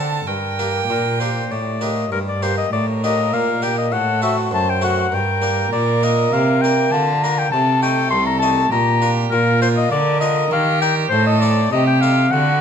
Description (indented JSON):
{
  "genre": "classical, baroque-style sonata movement with continuo",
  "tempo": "100 BPM",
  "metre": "3/4",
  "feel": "straight",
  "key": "G minor",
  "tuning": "A4 = 441 Hz",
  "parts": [
    { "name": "warm oboe", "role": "melody", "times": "0.0-12.6 s", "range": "A4 to C6", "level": "-20 LUFS", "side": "left 6 dB", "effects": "none" },
    { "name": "rich violin", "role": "second line", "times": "0.0-12.6 s", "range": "F4 to A5", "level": "-24 LUFS", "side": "right 8 dB", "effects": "none" },
    { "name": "harpsichord", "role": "accompaniment", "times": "0.0-12.6 s", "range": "C2 to Eb5", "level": "-23 LUFS", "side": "equal", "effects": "none" },
    { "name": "rich cello", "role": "bass", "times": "0.0-12.6 s", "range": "C2 to Eb3", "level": "-20 LUFS", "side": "right 2 dB", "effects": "none" }
  ],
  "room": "moderate recital hall reverb, RT60 1.6 s",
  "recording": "none",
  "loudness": "-15 LUFS",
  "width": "side -7 dB against mid",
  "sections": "0.0-2.1 A section; 2.1-12.6 A section",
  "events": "none",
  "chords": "0.3 Gm; 3.9 F#dim/A; 5.1 Gm; 5.7 Bb; 7.5 Adim/C; 8.7 Bb; 10.5 Ebmaj7; 11.1 Adim",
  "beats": "| 0.26 0.88 1.50 | 2.12 2.73 3.33 | 3.93 4.53 5.13 | 5.73 6.33 6.93 | 7.52 8.12 8.72 | 9.32 9.92 10.52 | 11.12 11.73 12.33"
}